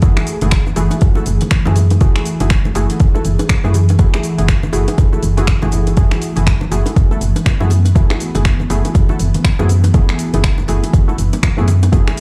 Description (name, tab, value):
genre	afro house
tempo	121 BPM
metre	4/4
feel	swing 60% on 16ths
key	F# minor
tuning	A4 = 440 Hz
part	ethereal airy pad	sustained chords	0.0-12.2 s	E3 to G#4	-26 LUFS	equal	ensemble chorus, built-in reverb, sidechain pumping
part	warm analog keys	stabs	0.0-12.2 s	A3 to A4	-26 LUFS	equal	chorus, sidechain pumping, digital delay
part	woody FM bass	bass	0.0-12.0 s	F#1 to F#2	-18 LUFS	equal	sidechain pumping
part	deep house drum kit	drums	0.0-12.2 s	finger snaps, hi-hat, shaker	-26 LUFS	equal	overdrive
part	electronic kick drum	drums	0.0-12.0 s	none	-15 LUFS	equal	overdrive
part	congas	percussion	0.0-12.0 s	none	-27 LUFS	equal	none
part	bongos	percussion	0.2-12.2 s	none	-28 LUFS	equal	none
room	digital ambience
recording	played on a big sound system in a bare room, large studio reverb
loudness	-14 LUFS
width	mono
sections	0.0-12.2 A section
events	none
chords	0.0 F#m9